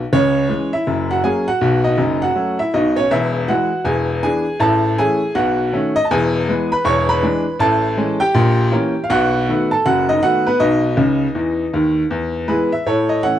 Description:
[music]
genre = jazz, stride piano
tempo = 160 BPM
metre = 4/4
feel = swing 63% on 8ths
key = E major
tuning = A4 = 441 Hz
[part]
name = bright upright piano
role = solo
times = 0.0-13.4 s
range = E1 to C#6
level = -15 LUFS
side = equal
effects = none
[sound]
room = light reverb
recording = dry, close 1970s-style studio recording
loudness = -15 LUFS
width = side -11 dB against mid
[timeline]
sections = 0.1-12.1 A section; 12.1-13.4 B section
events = upright piano fill 11.0-12.1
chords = 0.1 C#m; 0.9 F#7; 1.6 B9; 3.1 E; 3.9 E7; 4.6 A; 5.4 B9; 6.1 E; 6.9 E7; 7.6 Amaj7; 8.3 A#dim7; 9.1 B7; 10.6 B; 12.1 E; 12.8 A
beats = | 0.11 0.48 0.86 1.23 | 1.61 1.98 2.36 2.73 | 3.10 3.48 3.85 4.23 | 4.60 4.98 5.35 5.73 | 6.10 6.48 6.85 7.23 | 7.60 7.98 8.35 8.72 | 9.10 9.47 9.85 10.22 | 10.60 10.97 11.35 11.72 | 12.10 12.47 12.85 13.23

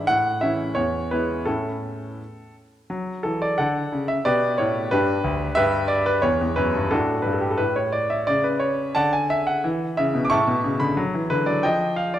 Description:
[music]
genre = classical-period piano sonatina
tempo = 88 BPM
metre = 2/4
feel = rubato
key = D major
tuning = A4 = 440 Hz
[part]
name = clear concert grand piano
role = solo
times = 0.0-12.2 s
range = D2 to D6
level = -20 LUFS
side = equal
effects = none
[sound]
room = moderate recital hall reverb, RT60 1.8 s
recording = none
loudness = -20 LUFS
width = side -11 dB against mid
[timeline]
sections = 0.0-2.9 A section; 2.9-12.2 B section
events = none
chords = 0.1 A; 0.8 E; 1.5 A; 2.9 D; 4.2 G; 6.2 Em; 6.9 D/A; 7.6 N.C.; 9.0 Dadd9; 9.7 E5; 10.3 A; 11.0 D; 11.6 D#add9/E#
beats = | 0.08 0.76 | 1.47 2.19 | 2.90 3.58 | 4.25 4.90 | 5.56 6.23 | 6.91 7.59 | 8.29 8.97 | 9.65 10.32 | 10.98 11.64

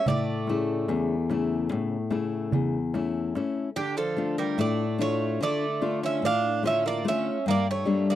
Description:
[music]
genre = greek folk, Greek bouzouki band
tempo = 146 BPM (eighths)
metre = 9/8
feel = straight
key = D harmonic minor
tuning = A4 = 440 Hz
[part]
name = Greek bouzouki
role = melody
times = 0.0-8.2 s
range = G4 to F5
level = -29 LUFS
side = right 3 dB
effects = none
[part]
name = Greek bouzouki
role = second line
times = 0.0-8.2 s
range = D3 to D4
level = -32 LUFS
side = right 6 dB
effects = none
[part]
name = nylon-string guitar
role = accompaniment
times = 0.1-8.2 s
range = E2 to F4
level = -26 LUFS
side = left 4 dB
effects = none
[part]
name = darbuka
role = percussion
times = 0.1-3.7 s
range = none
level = -30 LUFS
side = right 3 dB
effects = none
[sound]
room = light reverb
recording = dry, close 1970s-style studio recording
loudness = -24 LUFS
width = side -12 dB against mid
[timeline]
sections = 0.0-3.8 A section; 3.8-8.2 B section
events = none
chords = 0.1 A; 3.8 Dm; 7.5 Gm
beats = | 0.07 0.48 0.89 1.30 1.71 2.12 2.53 2.94 3.35 | 3.76 4.17 4.58 4.99 5.40 5.81 6.22 6.63 7.04 | 7.45 7.86

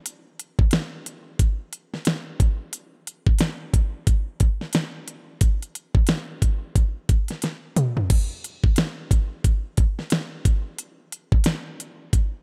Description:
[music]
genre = indie pop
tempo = 89 BPM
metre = 4/4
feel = swing 60% on 16ths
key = none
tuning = none
[part]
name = pop drum kit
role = drums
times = 0.1-12.3 s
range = crash cymbal, hi-hat, kick drum, snare drum, toms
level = -23 LUFS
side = equal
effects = none
[sound]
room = little or no reverb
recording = none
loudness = -23 LUFS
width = mono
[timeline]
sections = 0.0-8.1 A section; 8.1-12.4 B section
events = drum fill 7.4-8.1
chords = none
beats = | 0.05 0.72 1.39 2.06 | 2.73 3.40 4.08 4.75 | 5.42 6.09 6.76 7.43 | 8.10 8.77 9.44 10.12 | 10.79 11.46 12.13

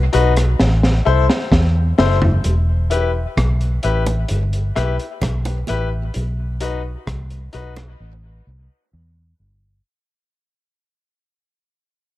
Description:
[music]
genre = dub reggae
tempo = 65 BPM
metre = 4/4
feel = straight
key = E harmonic minor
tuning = A4 = 438 Hz
[part]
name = vintage muted fingered electric bass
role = bass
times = 0.0-9.8 s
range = E1 to E2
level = -18 LUFS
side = equal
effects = none
[part]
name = bright grand piano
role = stabs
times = 0.1-7.7 s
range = D#4 to C5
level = -22 LUFS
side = left 6 dB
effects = dub echo
[part]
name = crunchy breakbeat drum kit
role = drums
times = 0.1-8.0 s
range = hi-hat, kick drum, rim click, snare drum, toms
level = -20 LUFS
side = equal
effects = none
[part]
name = bongos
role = percussion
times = 4.1-8.0 s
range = none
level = -32 LUFS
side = right 3 dB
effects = dub echo
[sound]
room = light reverb, studio reverb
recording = dark, warm production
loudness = -15 LUFS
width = side -16 dB against mid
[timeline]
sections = 0.0-2.4 A section; 2.4-9.8 B section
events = break 0.0-2.4, 8.0-9.8; drum fill 0.6-2.4; fade-out 2.4-9.8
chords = 0.0 B; 0.6 Am; 2.4 Em; 6.1 B; 8.0 Am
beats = 0.59 1.52 | 2.44 3.37 4.29 5.22 | 6.14 7.07 8.00 8.92

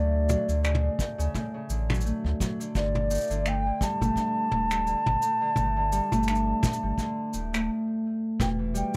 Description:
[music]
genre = folktronica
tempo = 85 BPM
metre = 4/4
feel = swing 56% on 16ths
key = unclear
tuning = A4 = 445 Hz
[part]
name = mellow hollow wooden flute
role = melody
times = 0.0-9.0 s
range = D5 to A5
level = -31 LUFS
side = equal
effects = plate reverb, delay
[part]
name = Celtic harp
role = arpeggios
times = 0.0-9.0 s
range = A2 to D4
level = -33 LUFS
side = equal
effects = delay
[part]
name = warm sub bass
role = bass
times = 0.0-8.8 s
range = D1 to D2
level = -31 LUFS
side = equal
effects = none
[part]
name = vintage brush drum kit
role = drums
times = 0.3-9.0 s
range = cabasa, finger snaps, toms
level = -35 LUFS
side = equal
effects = none
[part]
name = kick drum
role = drums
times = 1.0-8.6 s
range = none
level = -33 LUFS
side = equal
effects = none
[sound]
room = moderate studio reverb, RT60 0.6 s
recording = rough home demo mix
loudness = -27 LUFS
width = mono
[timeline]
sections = 0.0-8.4 A section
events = filter sweep on harp 0.0-8.4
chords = 0.0 Dmaj7; 2.8 Gsus2; 8.4 Em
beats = 0.64 1.34 2.05 | 2.75 3.46 4.16 4.87 | 5.58 6.28 6.99 7.69 | 8.40

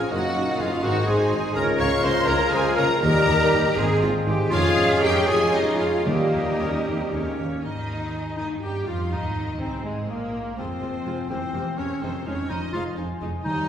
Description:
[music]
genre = classical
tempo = 82 BPM (dotted quarters)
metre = 6/8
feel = rubato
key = Ab major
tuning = A4 = 441 Hz
[part]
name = rich studio violin section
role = melody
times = 0.0-13.7 s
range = Ab3 to Db6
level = -31 LUFS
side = left 2 dB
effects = none
[part]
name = mellow oboe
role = second line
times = 0.0-7.4 s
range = Bb4 to F5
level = -31 LUFS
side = equal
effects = none
[part]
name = warm clarinet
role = second line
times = 0.0-13.7 s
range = Ab3 to Db5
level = -29 LUFS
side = left 1 dB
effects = none
[part]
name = rich symphonic viola section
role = accompaniment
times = 0.0-13.7 s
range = G3 to Db5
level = -31 LUFS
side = right 1 dB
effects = none
[part]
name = warm bassoon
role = accompaniment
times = 0.0-7.4 s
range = G3 to Db4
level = -30 LUFS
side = right 1 dB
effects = none
[part]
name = dark French horn section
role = sustained chords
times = 0.0-7.5 s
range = G3 to F4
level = -29 LUFS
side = left 1 dB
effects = none
[part]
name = concert harp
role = arpeggios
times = 0.0-13.7 s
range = Gb2 to Ab5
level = -31 LUFS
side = left 2 dB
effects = none
[part]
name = rich symphonic cello section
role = bass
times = 0.0-13.7 s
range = Eb2 to Ab4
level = -30 LUFS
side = right 1 dB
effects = none
[part]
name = clear symphonic violin section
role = second line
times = 0.1-13.7 s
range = Bb3 to G5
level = -32 LUFS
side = left 1 dB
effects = none
[part]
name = concert flute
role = second line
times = 0.1-7.4 s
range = Eb4 to F5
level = -30 LUFS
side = left 1 dB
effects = none
[part]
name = dark symphonic double bass section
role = bass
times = 0.1-13.7 s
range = E1 to G2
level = -31 LUFS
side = right 1 dB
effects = none
[part]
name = mellow tuba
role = bass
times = 0.1-7.5 s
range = F1 to Eb2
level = -31 LUFS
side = right 1 dB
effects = none
[part]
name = timpani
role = percussion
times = 6.1-6.8, 13.5-13.7 s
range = Eb3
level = -30 LUFS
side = right 1 dB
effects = none
[sound]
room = wet recital hall reverb, RT60 1.8 s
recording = recorded in a church or concert hall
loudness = -20 LUFS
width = side -9 dB against mid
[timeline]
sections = 0.0-7.6 A section; 7.6-13.7 B section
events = none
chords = 0.1 Ebm/Gb; 0.8 Ab; 1.6 Bbm7/Db; 3.0 Eb; 3.8 Ab; 4.5 Db/F; 6.1 Eb; 7.6 Ab/Eb; 8.4 Eb7; 9.1 Ab; 10.6 Fm; 11.3 C7/E; 12.0 Fm7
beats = | 0.11 0.83 | 1.56 2.28 | 3.02 3.77 | 4.51 5.28 | 6.06 6.86 | 7.64 8.38 | 9.12 9.85 | 10.58 11.30 | 12.02 12.74 | 13.46

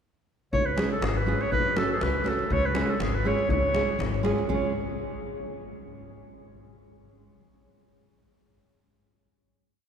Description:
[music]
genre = balkan folk, Balkan wedding band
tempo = 121 BPM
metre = 2/4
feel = swing 54% on 16ths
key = unclear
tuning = A4 = 440 Hz
[part]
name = clear clarinet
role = melody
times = 0.5-4.7 s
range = G#4 to C#5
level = -28 LUFS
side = right 1 dB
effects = none
[part]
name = upright bass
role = bass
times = 0.5-4.7 s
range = G#1 to F#2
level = -31 LUFS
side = left 1 dB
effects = none
[part]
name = davul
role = percussion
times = 0.5-4.7 s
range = none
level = -32 LUFS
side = left 1 dB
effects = none
[part]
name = nylon-string guitar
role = accompaniment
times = 0.8-4.7 s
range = G#3 to A4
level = -30 LUFS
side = right 2 dB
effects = none
[sound]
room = wet cathedral reverb, RT60 5.1 s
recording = recorded in a church or concert hall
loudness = -24 LUFS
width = side -8 dB against mid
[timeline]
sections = 0.5-4.5 A section; 4.5-5.5 final chord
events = none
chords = 0.5 C#; 1.5 F#m; 2.5 C#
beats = | 0.52 1.02 | 1.52 2.01 | 2.51 3.01 | 3.51 4.00 | 4.50

